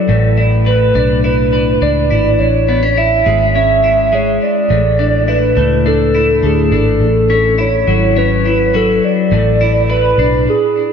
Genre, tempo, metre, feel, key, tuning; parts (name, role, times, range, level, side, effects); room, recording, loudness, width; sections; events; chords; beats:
dream pop; 104 BPM; 4/4; straight; A4 = 442 Hz
hollow clarinet-like synth lead; melody; 0.0-10.9 s; G#4 to E5; -14 LUFS; right 2 dB; chorus, diffuse ambient delay
twelve-string electric guitar; arpeggios; 0.0-10.9 s; A2 to B4; -15 LUFS; left 3 dB; lush chorus, diffuse ambient delay
vintage muted fingered electric bass; bass; 0.1-10.5 s; G#1 to D2; -16 LUFS; equal
wet plate reverb, RT60 3.4 s; dreamy mix soaked in reverb; -10 LUFS; side -7 dB against mid
0.0-10.9 A section
stop 10.5-10.9
0.1 E7(no3)/A; 2.4 Amaj7; 4.7 Dsus2/A; 7.0 F#m7; 9.3 E7/A
| 0.09 0.66 1.24 1.82 | 2.40 2.97 3.55 4.12 | 4.70 5.28 5.86 6.43 | 7.01 7.59 8.16 8.74 | 9.32 9.89 10.47